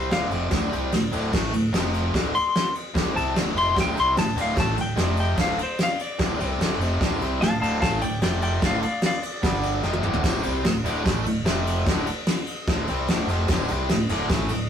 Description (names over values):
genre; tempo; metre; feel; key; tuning
garage rock duo or trio; 148 BPM; 4/4; straight; D minor; A4 = 440 Hz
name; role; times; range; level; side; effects
clean lap steel guitar; melody; 0.0-10.0 s; C5 to C6; -26 LUFS; left 3 dB; none
biting overdriven guitar; riff; 0.0-14.7 s; D2 to C4; -26 LUFS; equal; none
overdriven fingered electric bass; bass; 0.0-14.7 s; D1 to C2; -29 LUFS; right 1 dB; none
soft brush drum kit; drums; 0.1-14.6 s; crash cymbal, kick drum, ride cymbal, snare drum, toms; -25 LUFS; equal; none
room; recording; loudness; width
wet small room reverb, RT60 0.6 s; rough rehearsal-room recording, warm saturation; -21 LUFS; side -8 dB against mid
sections
0.0-10.2 A section; 10.2-14.7 B section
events
electric slide guitar solo 0.0-10.2; drum fill 9.8-10.2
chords
0.0 Dm; 1.7 F5; 2.1 Dm; 5.0 F5; 5.4 Dm; 8.2 F5; 8.6 D5; 9.4 G5; 9.8 Dm; 10.2 D5; 11.5 F5; 11.9 Dm